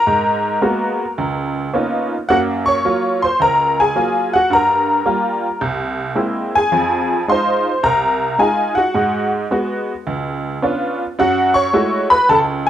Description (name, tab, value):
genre	solo jazz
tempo	108 BPM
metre	4/4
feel	swing 67% on 8ths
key	unclear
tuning	A4 = 440 Hz
part	honky-tonk upright piano	solo	0.0-12.7 s	C2 to Db6	-14 LUFS	equal	none
room	light reverb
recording	rough home demo mix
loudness	-15 LUFS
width	side -10 dB against mid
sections	0.0-12.7 A section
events	none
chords	0.1 Abm9; 1.2 Db13; 2.3 Gbmaj7; 4.5 Gm7; 5.6 Caug7; 6.7 Fm7; 9.0 Abm7; 10.1 Db7b9; 11.2 Gbm9